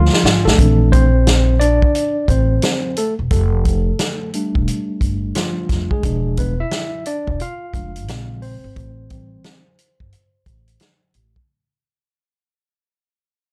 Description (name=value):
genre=hip hop, jazz-hop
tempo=88 BPM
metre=4/4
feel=swing 65% on 16ths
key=unclear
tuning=A4 = 440 Hz
part: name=barky tine electric piano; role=accompaniment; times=0.0-11.1 s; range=Db3 to F5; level=-23 LUFS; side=equal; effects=none
part: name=upright bass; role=bass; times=0.0-11.3 s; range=E1 to Bb1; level=-20 LUFS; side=equal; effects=none
part: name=vintage drum kit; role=drums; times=0.1-11.5 s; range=hi-hat, kick drum, snare drum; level=-21 LUFS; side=equal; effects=none
room=little or no reverb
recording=dry, gritty hardware recording, cassette tape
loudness=-17 LUFS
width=mono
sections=0.6-11.5 A section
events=drum fill 0.0-0.6; fade-out 0.6-11.5; tine electric piano solo 0.6-11.5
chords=0.0 F6; 0.6 Bbmaj9#11; 3.3 F69; 6.0 E7b9; 8.1 Bbm7; 8.8 Am7